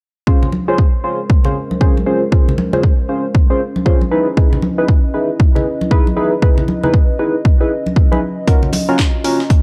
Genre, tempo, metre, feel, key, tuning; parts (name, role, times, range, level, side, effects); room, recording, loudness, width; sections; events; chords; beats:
deep house; 117 BPM; 4/4; swing 61% on 16ths; Bb minor; A4 = 440 Hz
dark analog pad; sustained chords; 1.0-9.6 s; Ab3 to Eb5; -27 LUFS; equal; chorus, phaser, sidechain pumping
chorused polysynth; stabs; 0.3-9.4 s; Db4 to C5; -20 LUFS; equal; sidechain pumping, analog delay
electronic kick drum; drums; 0.3-9.6 s; -14 LUFS; equal; overdrive
congas and bongos; percussion; 0.4-8.9 s; -24 LUFS; equal
breakbeat sampler-style drum kit; drums; 8.5-9.6 s; hi-hat, snare drum; -30 LUFS; equal; high-pass filter on hats, high-pass filter on snare
house drum kit; drums; 8.7-9.4 s; hi-hat, snare drum; -25 LUFS; equal; overdrive
little or no reverb; -14 LUFS; mono
0.3-9.6 A section
0.3 Bbm9; 4.1 Dbm9; 8.2 Ebm9
| 0.27 0.78 1.29 1.81 | 2.32 2.83 3.35 3.86 | 4.37 4.88 5.40 5.91 | 6.42 6.94 7.45 7.96 | 8.47 8.99 9.50